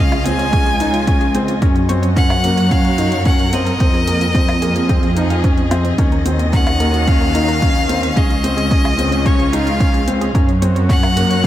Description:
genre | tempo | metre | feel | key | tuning
piano and strings electronica | 110 BPM | 4/4 | straight | unclear | A4 = 440 Hz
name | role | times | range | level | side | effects
bright violin | melody | 0.0-11.5 s | Db5 to Ab5 | -21 LUFS | left 1 dB | analog delay
rich studio string section | sustained chords | 0.0-11.5 s | Db3 to Eb5 | -24 LUFS | left 1 dB | sidechain pumping
felt-muted upright piano | riff | 0.0-11.5 s | Bb3 to Eb4 | -20 LUFS | left 1 dB | analog delay
warm studio double bass section | bass | 0.0-11.5 s | Db2 to Gb2 | -18 LUFS | equal | sidechain pumping
analog pluck | arpeggios | 0.1-11.5 s | C4 to F5 | -29 LUFS | right 2 dB | chorus, sidechain pumping, analog delay
electronic hi-hat and woodblock | drums | 0.1-11.5 s | none | -30 LUFS | left 1 dB | overdrive
electronic kick drum | drums | 0.5-11.5 s | none | -16 LUFS | equal | overdrive
room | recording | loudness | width
moderate lush hall reverb, RT60 2.9 s | dreamy mix soaked in reverb | -13 LUFS | side -12 dB against mid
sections
0.0-11.5 A section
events
none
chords
0.0 Dbadd9; 1.6 Gb; 3.8 Fm7; 6.0 Ebm7; 8.2 Dbadd9; 10.3 Gb

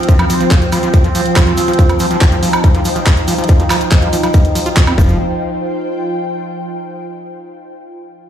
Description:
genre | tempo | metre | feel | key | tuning
psychedelic trance | 141 BPM | 4/4 | straight | unclear | A4 = 438 Hz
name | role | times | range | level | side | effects
overtone-sweeping drone | sustained chords | 0.0-5.0 s | F3 to Eb4 | -20 LUFS | equal | chorus, built-in reverb, phaser, sidechain pumping
garage drum kit | drums | 0.0-5.0 s | handclaps, hi-hat, woodblock | -19 LUFS | right 1 dB | overdrive
ethereal airy pad | texture | 0.0-6.9 s | F4 to G5 | -21 LUFS | right 1 dB | ensemble chorus, built-in reverb, sidechain pumping
screaming distorted acid line | riff | 0.1-5.2 s | F3 to F4 | -20 LUFS | right 1 dB | distortion, chorus, auto-pan, sidechain pumping, ping-pong delay
electronic kick drum | drums | 0.1-5.1 s | none | -10 LUFS | equal | overdrive
egg shaker | percussion | 0.1-5.2 s | none | -32 LUFS | right 4 dB | none
tight sequencer bass | bass | 5.0-5.2 s | F1 | -14 LUFS | equal | none
room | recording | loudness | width
light reverb | played on a big sound system in a bare room, large studio reverb | -10 LUFS | side -10 dB against mid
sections
0.0-5.2 A section; 5.2-6.9 B section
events
none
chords
0.0 F5

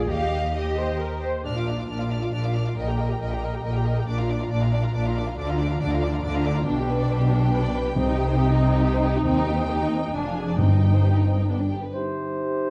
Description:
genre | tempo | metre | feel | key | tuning
quick classical-period movement for symphony orchestra | 138 BPM | 3/4 | straight | Bb major, C minor from 6.7 s | A4 = 440 Hz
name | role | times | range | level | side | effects
warm studio violin section | second line | 0.0-11.9 s | B3 to G5 | -32 LUFS | equal | none
warm symphonic viola section | accompaniment | 0.0-11.6 s | D4 to C5 | -32 LUFS | equal | none
warm studio cello section | bass | 0.0-11.7 s | Eb2 to D3 | -28 LUFS | equal | none
warm studio double bass section | bass | 0.0-11.7 s | F1 to Eb2 | -29 LUFS | equal | none
rich studio violin section | melody | 0.1-11.7 s | Eb5 to F6 | -38 LUFS | equal | none
timpani | percussion | 8.0-11.2 s | G2 to C3 | -29 LUFS | equal | none
dark clarinet | second line | 11.9-12.7 s | Eb4 | -35 LUFS | equal | none
mellow cor anglais | second line | 11.9-12.7 s | C5 | -33 LUFS | equal | none
mellow hollow wooden flute | second line | 11.9-12.7 s | G4 | -33 LUFS | equal | none
mellow bassoon | accompaniment | 11.9-12.7 s | C3 | -32 LUFS | equal | none
room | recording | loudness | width
wet scoring stage reverb, RT60 1.5 s | dark, warm production | -24 LUFS | mono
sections
0.0-1.4 A section; 1.4-11.9 B section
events
none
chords
0.1 Eb; 1.4 Bb; 2.8 Eb/Bb; 4.1 Bb; 5.4 Bb/D; 6.7 G/B; 8.0 Cm; 9.3 Cm/Eb; 10.1 Ddim/F; 10.6 Cm/G; 11.5 G; 11.9 Cm

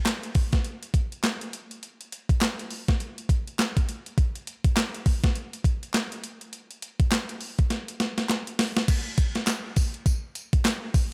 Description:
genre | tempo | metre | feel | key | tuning
R&B | 102 BPM | 4/4 | swing 60% on 16ths | none | none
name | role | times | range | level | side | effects
crisp 8-bit digital drum machine | drums | 0.1-11.1 s | crash cymbal, handclaps, hi-hat, kick drum, snare drum, tambourine | -26 LUFS | equal | overdrive
group handclap | percussion | 0.1-10.8 s | none | -39 LUFS | equal | none
room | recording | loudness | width
little or no reverb | none | -27 LUFS | mono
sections
0.0-8.9 A section; 8.9-11.1 B section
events
drum fill 7.7-8.9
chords
none

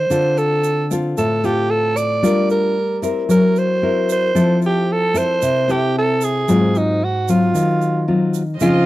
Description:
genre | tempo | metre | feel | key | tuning
bossa nova | 113 BPM | 4/4 | straight | unclear | A4 = 440 Hz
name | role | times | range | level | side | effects
growling alto saxophone | melody | 0.0-8.9 s | Eb4 to D5 | -18 LUFS | right 2 dB | none
nylon-string guitar | accompaniment | 0.0-8.9 s | Ab2 to Bb4 | -17 LUFS | left 2 dB | none
tube shaker | percussion | 0.1-8.9 s | none | -35 LUFS | right 20 dB | none
warm studio string section | sustained chords | 8.6-8.9 s | F4 to Eb5 | -24 LUFS | right 2 dB | none
room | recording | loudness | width
light reverb | dry, close 1970s-style studio recording | -15 LUFS | side -16 dB against mid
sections
0.0-8.6 A section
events
none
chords
0.1 Dm7; 2.2 Gm7; 3.3 Gb7#11; 4.4 Fmaj7; 6.5 Ab6

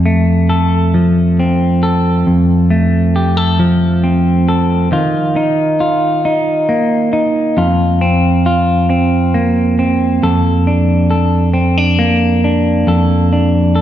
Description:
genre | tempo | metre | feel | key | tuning
pop | 45 BPM (dotted quarters) | 6/8 | straight | unclear | A4 = 441 Hz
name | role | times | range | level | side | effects
clean electric guitar | solo | 0.0-13.8 s | F2 to A4 | -10 LUFS | equal | none
room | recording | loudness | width
wet recital hall reverb, RT60 1.7 s | recorded in a church or concert hall, nothing above 8.0 kHz | -11 LUFS | side -11 dB against mid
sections
0.0-4.9 A section; 4.9-13.8 B section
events
none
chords
0.0 F; 4.9 Ebsus2; 7.6 Fsus4; 10.2 Bbmaj7/F

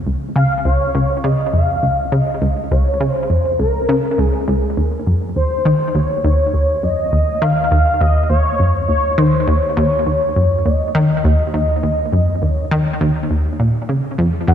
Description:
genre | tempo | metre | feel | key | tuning
ambient, sequencer-driven space music | 102 BPM | 4/4 | straight | unclear | A4 = 440 Hz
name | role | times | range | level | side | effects
analog pluck | riff | 0.0-14.5 s | Db2 to Eb3 | -15 LUFS | equal | chorus, cassette tape, analog delay
round analog bass | bass | 0.0-14.5 s | Db2 to Eb2 | -30 LUFS | equal | none
expressive synth lead | melody | 0.4-14.5 s | Ab4 to Gb5 | -19 LUFS | equal | analog chorus, analog delay
room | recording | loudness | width
wet lush hall reverb, RT60 2.9 s | dark, warm production | -14 LUFS | side -9 dB against mid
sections
0.0-14.5 A section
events
filter sweep on synth arpeggio sound 0.0-14.5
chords
0.0 Db; 4.8 Ebm7

